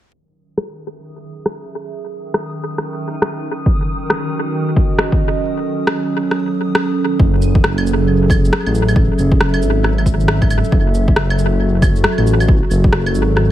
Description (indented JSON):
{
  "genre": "future garage",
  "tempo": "136 BPM",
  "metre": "4/4",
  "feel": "swing 62% on 16ths",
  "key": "F# dorian",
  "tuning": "A4 = 440 Hz",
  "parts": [
    { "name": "warbly tape-like pad", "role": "sustained chords", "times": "0.1-13.5 s", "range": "F#3 to E5", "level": "-20 LUFS", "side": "right 2 dB", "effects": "chorus, built-in reverb, sidechain pumping" },
    { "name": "backwards swelling texture", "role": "texture", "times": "1.1-7.2 s", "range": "D#3 to D#6", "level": "-27 LUFS", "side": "left 1 dB", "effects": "built-in reverb" },
    { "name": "electronic rim click, shaker and claves", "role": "drums", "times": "0.6-13.5 s", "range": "none", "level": "-20 LUFS", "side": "equal", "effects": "overdrive, small room ambience, analog delay" },
    { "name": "electronic kick drum", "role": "drums", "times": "3.7-12.9 s", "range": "none", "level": "-15 LUFS", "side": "equal", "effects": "overdrive, small room ambience" },
    { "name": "dark detuned saw bass", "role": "bass", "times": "7.2-13.5 s", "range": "F#1 to A1", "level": "-16 LUFS", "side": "equal", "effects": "sidechain pumping" }
  ],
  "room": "light reverb, digital ambience",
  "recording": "echo-heavy mix, vinyl crackle, low-pass filter",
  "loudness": "-13 LUFS",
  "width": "side -13 dB against mid",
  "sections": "0.1-7.2 A section; 7.2-13.5 B section",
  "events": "fade-in on ambient pad 0.1-7.2; filter sweep 0.1-7.2; kick drops out 5.4-7.2",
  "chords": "0.1 F#m7"
}